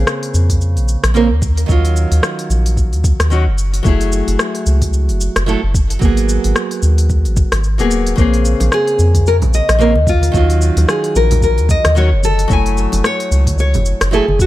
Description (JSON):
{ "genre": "sunset chillout", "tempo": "111 BPM", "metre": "4/4", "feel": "swing 57% on 16ths", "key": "unclear", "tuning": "A4 = 440 Hz", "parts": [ { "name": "nylon-string guitar", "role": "accompaniment", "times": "0.0-14.3 s", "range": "Db3 to Ab5", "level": "-19 LUFS", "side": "moving between left 5 dB and right 6 dB", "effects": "auto-pan, digital delay" }, { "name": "round analog bass", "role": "bass", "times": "0.0-14.5 s", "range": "Eb1 to F2", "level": "-14 LUFS", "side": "equal", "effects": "none" }, { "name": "smooth R&B drum kit", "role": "drums", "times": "0.1-14.5 s", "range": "hi-hat, rim click, shaker", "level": "-21 LUFS", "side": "left 1 dB", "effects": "studio reverb" }, { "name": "electronic kick drum", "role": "drums", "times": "0.5-14.5 s", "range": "none", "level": "-16 LUFS", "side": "equal", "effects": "studio reverb" }, { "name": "bongos and congas", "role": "percussion", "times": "8.6-14.4 s", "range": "none", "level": "-24 LUFS", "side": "right 2 dB", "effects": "none" }, { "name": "nylon-string guitar", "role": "melody", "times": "8.7-14.5 s", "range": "F4 to Eb5", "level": "-17 LUFS", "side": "left 2 dB", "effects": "digital delay" } ], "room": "studio reverb", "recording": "none", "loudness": "-12 LUFS", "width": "side -16 dB against mid", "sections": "0.0-14.5 A section", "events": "none", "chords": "0.0 Bbm9; 1.4 Ebm9; 3.6 Gbm9; 6.0 Abm9; 8.2 Bbm9; 10.1 Ebm9; 12.2 Gbm9" }